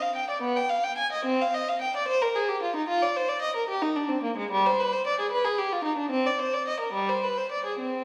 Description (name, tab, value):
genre	classical, baroque-style suite movement for unaccompanied violin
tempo	74 BPM (dotted quarters)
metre	6/8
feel	rubato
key	unclear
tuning	A4 = 437 Hz
part	warm violin	solo	0.0-8.0 s	G3 to Ab5	-27 LUFS	equal	none
room	wet recital hall reverb, RT60 1.5 s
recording	heard from further back in the room, vinyl crackle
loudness	-27 LUFS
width	mono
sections	0.0-8.0 A section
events	none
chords	none